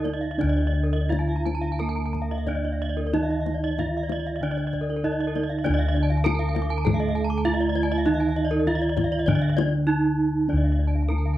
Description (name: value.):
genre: Balinese gamelan.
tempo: 84-99 BPM.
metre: 4/4.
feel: straight.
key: D pelog.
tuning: A4 = 440 Hz.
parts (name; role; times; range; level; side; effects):
gamelan-type bronze metallophone; melody; 0.0-11.4 s; D4 to Bb4-40c; -27 LUFS; right 3 dB; none.
gamelan-type bronze metallophone; arpeggios; 0.0-11.3 s; Bb4-40c to D6; -32 LUFS; left 4 dB; none.
gamelan-type bronze metallophone; arpeggios; 0.0-11.4 s; D5 to Bb5-40c; -35 LUFS; right 7 dB; none.
gamelan-type bossed gongs; bass; 0.0-11.4 s; D2 to Eb4; -25 LUFS; left 1 dB; none.
kendang; percussion; 0.1-11.3 s; none; -30 LUFS; left 6 dB; none.
gamelan-type bronze metallophone; accompaniment; 0.4-11.4 s; D3 to Bb3-40c; -30 LUFS; right 3 dB; none.
room: little or no reverb.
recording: dry, close 1970s-style studio recording.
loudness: -22 LUFS.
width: side -14 dB against mid.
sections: 0.0-5.7 A section; 5.7-11.4 B section.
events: none.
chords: none.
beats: | 0.40 1.11 1.80 2.47 | 3.13 3.78 4.42 5.04 | 5.65 6.26 6.87 7.47 | 8.07 8.68 9.29 9.89 | 10.50 11.11.